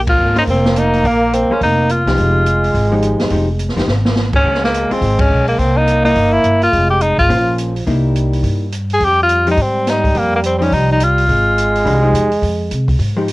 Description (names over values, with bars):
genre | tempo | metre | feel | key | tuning
jazz, small-group swing and bop | 211 BPM | 4/4 | swing 61% on 8ths | F minor | A4 = 439 Hz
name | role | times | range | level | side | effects
breathy trombone | second line | 0.0-13.1 s | F3 to Bb3 | -19 LUFS | right 2 dB | none
upright bass | bass | 0.0-13.3 s | F1 to C3 | -17 LUFS | equal | none
warm tenor saxophone | melody | 0.1-12.2 s | Bb3 to Ab4 | -15 LUFS | left 1 dB | cassette tape
open jazz drum kit | drums | 0.1-13.3 s | crash cymbal, hi-hat, kick drum, ride cymbal, snare drum | -21 LUFS | equal | cassette tape
vintage hollow-body jazz guitar | accompaniment | 0.4-13.3 s | E3 to C5 | -19 LUFS | left 2 dB | none
room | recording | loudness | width
light reverb | home recording on cassette | -12 LUFS | side -20 dB against mid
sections
0.0-9.0 A section; 9.0-13.3 A section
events
band accent 0.0, 5.2; drum fill 3.9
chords
0.0 Bb7sus2; 2.2 Fm9; 4.5 Dbmaj7(no3); 5.6 C7#9; 6.7 Fm; 7.3 Bbm9; 7.9 C7#9; 9.0 Fm9